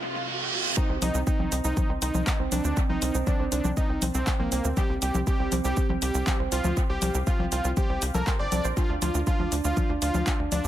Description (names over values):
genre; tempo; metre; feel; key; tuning
melodic techno; 120 BPM; 4/4; straight; C dorian; A4 = 439 Hz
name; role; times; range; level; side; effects
dark analog pad; sustained chords; 0.0-0.7 s; C3 to Eb5; -45 LUFS; left 2 dB; chorus, sidechain pumping
riser and reverse cymbal; sound effects; 0.0-0.8 s; none; -29 LUFS; right 4 dB; none
fat analog lead; melody; 0.8-10.7 s; Bb3 to D5; -31 LUFS; equal; dub echo
woody wave-folded pluck; arpeggios; 0.8-10.7 s; C4 to C6; -32 LUFS; right 6 dB; chorus, sidechain pumping, analog delay
electronic kick drum; drums; 0.8-10.4 s; none; -26 LUFS; equal; none
punchy analog drum machine; drums; 0.8-10.7 s; congas, handclaps, hi-hat, shaker; -32 LUFS; left 2 dB; dub echo
tight sequencer bass; bass; 0.9-10.7 s; G1 to Eb2; -28 LUFS; equal; sidechain pumping
room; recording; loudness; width
digital ambience; echo-heavy mix; -23 LUFS; side -12 dB against mid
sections
0.8-10.7 A section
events
break 0.0-0.8; riser 0.0-0.8; reverse cymbal 0.0-0.8; drop 0.8-10.7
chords
0.0 Cm; 0.8 C5; 8.8 Dm